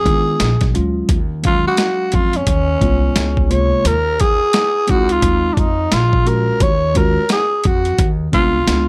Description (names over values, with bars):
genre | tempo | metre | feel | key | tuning
hip hop, jazz-hop | 87 BPM | 4/4 | swing 62% on 16ths | unclear | A4 = 440 Hz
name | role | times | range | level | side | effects
growling tenor saxophone | melody | 0.0-8.9 s | Db4 to Db5 | -20 LUFS | equal | plate reverb
mellow tine electric piano | accompaniment | 0.0-8.9 s | C3 to F5 | -24 LUFS | equal | none
upright bass | bass | 0.0-8.9 s | Bb1 to Eb3 | -21 LUFS | equal | none
boom bap sampler-style drum kit | drums | 0.1-8.9 s | hi-hat, kick drum, snare drum | -20 LUFS | equal | overdrive
room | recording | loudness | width
light reverb | none | -16 LUFS | mono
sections
0.0-8.9 A section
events
none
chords
0.4 Bb7b9; 1.1 Ebm11; 2.5 Dbmaj9/Eb; 3.2 Db7; 3.8 Dbmaj13; 5.2 Fm7/Eb; 5.9 Bb5; 6.6 Ebm11; 8.0 Cmadd11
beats
0.40 | 1.09 1.78 2.47 3.16 | 3.85 4.54 5.23 5.92 | 6.61 7.30 7.99 8.68